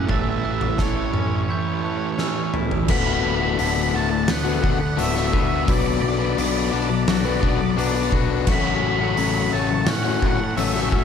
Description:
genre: post-rock.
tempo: 86 BPM.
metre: 4/4.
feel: straight.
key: D major.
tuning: A4 = 440 Hz.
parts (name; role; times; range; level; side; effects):
octave-fuzz lead guitar; melody; 0.0-11.0 s; C#5 to B5; -27 LUFS; right 2 dB; distortion, analog delay.
bright symphonic string section; sustained chords; 0.0-11.0 s; A3 to C#6; -34 LUFS; right 1 dB; none.
glockenspiel with soft plastic mallets; arpeggios; 0.0-2.9 s; E6 to A6; -38 LUFS; right 6 dB; analog delay.
twangy electric guitar; arpeggios; 0.0-11.0 s; D2 to F#4; -33 LUFS; left 4 dB; analog delay.
fuzz guitar; riff; 0.0-2.9 s; A2 to A3; -26 LUFS; right 11 dB; distortion.
fuzz picked electric bass; bass; 0.0-11.0 s; D1 to A2; -26 LUFS; equal; overdrive.
oversized low-tuned drum kit; drums; 0.1-11.0 s; crash cymbal, hi-hat, kick drum, snare drum, toms; -24 LUFS; equal; none.
overdriven electric guitar; riff; 2.9-11.0 s; D2 to B4; -23 LUFS; left 13 dB; none.
room: small room ambience.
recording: dark, warm production.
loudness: -19 LUFS.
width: side -7 dB against mid.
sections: 0.0-2.9 A section; 2.9-11.0 B section.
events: drum fill 2.2-2.9.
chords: 0.1 A7; 2.9 D6; 5.7 Bm7; 8.5 F#m/A.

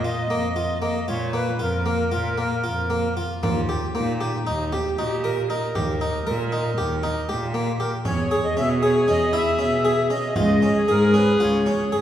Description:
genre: contemporary instrumental, chamber music in an uneven meter.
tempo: 233 BPM (eighths).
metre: 9/8.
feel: straight.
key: unclear.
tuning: A4 = 440 Hz.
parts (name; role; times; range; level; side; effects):
accordion; melody; 0.0-3.1, 7.8-12.0 s; Bb4 to E5; -26 LUFS; equal; light tremolo tuning.
harpsichord; arpeggios; 0.0-12.0 s; Bb3 to Bb4; -26 LUFS; left 1 dB; none.
rich cello; bass; 0.0-12.0 s; Db2 to B2; -25 LUFS; right 1 dB; none.
clear clarinet; second line; 3.4-12.0 s; Eb4 to Bb4; -25 LUFS; equal; none.
frame drum; percussion; 3.4-11.9 s; none; -31 LUFS; right 2 dB; none.
room: wet scoring stage reverb, RT60 1.4 s.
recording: heard from further back in the room.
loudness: -20 LUFS.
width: side -10 dB against mid.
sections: 0.0-12.0 A section.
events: none.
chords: 0.0 Bbsus4; 3.4 Eb; 8.1 E6; 10.4 Db.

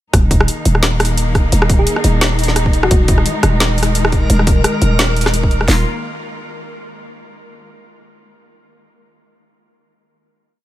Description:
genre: half-time drum and bass.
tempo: 173 BPM.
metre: 4/4.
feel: swing 56% on 16ths, half-time.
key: unclear.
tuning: A4 = 440 Hz.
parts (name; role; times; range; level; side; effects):
warm studio cello section; sustained chords; 0.1-5.8 s; Eb3 to F4; -22 LUFS; left 1 dB; sidechain pumping.
growling 808-style bass; bass; 0.1-5.8 s; Eb1; -15 LUFS; equal; none.
drum and bass drum kit; drums; 0.1-5.7 s; hi-hat, rim click, snare drum; -18 LUFS; equal; overdrive, studio reverb.
trap drum kit; drums; 0.1-5.8 s; hi-hat, kick drum, snare drum; -14 LUFS; equal; studio reverb.
thumb-piano-like synth pluck; melody; 1.8-3.2 s; Gb4 to Ab4; -24 LUFS; left 1 dB; chorus, ping-pong delay.
backwards swelling texture; texture; 3.4-5.7 s; Bb4; -26 LUFS; equal; built-in reverb.
room: little or no reverb.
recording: none.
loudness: -12 LUFS.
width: side -14 dB against mid.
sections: 0.1-5.7 drop; 5.7-7.1 final chord.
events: drop 0.1-5.7.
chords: 0.1 Eb5.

